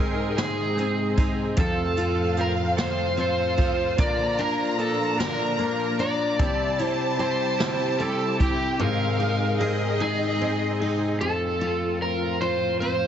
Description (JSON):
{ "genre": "six-eight pop ballad", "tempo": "50 BPM (dotted quarters)", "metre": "6/8", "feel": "straight", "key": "unclear", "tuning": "A4 = 440 Hz", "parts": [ { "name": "overdriven slide guitar", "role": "melody", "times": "0.0-13.1 s", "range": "G4 to D5", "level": "-26 LUFS", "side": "equal", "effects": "digital delay" }, { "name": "picked steel-string acoustic guitar", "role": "accompaniment", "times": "0.0-13.1 s", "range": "F2 to Ab4", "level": "-27 LUFS", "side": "left 2 dB", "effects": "none" }, { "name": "warm studio string section", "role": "sustained chords", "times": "0.0-13.1 s", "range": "A2 to Ab4", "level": "-32 LUFS", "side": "right 1 dB", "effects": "none" }, { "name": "direct-recorded clean electric guitar", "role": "arpeggios", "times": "0.0-11.2 s", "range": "F2 to Bb4", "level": "-33 LUFS", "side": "right 5 dB", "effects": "ensemble chorus" }, { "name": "jazz brush drum kit", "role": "drums", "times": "0.4-8.6 s", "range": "hi-hat, kick drum, snare drum", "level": "-26 LUFS", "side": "right 1 dB", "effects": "none" }, { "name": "warm studio violin section", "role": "second line", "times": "1.6-11.2 s", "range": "Eb5 to Bb5", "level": "-31 LUFS", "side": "equal", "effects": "none" } ], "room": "moderate echo chamber reverb, RT60 2.3 s", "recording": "heavily compressed radio sound, multiband compression, nothing above 7.7 kHz", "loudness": "-22 LUFS", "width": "side -9 dB against mid", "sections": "0.0-11.2 A section; 11.2-13.1 A section", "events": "none", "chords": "0.0 Ab; 1.6 F; 4.0 Bb; 6.4 C; 8.8 Ab; 11.2 F", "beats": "0.38 | 1.58 2.78 | 3.98 5.19 | 6.39 7.59 | 8.80 10.00 | 11.20 12.41" }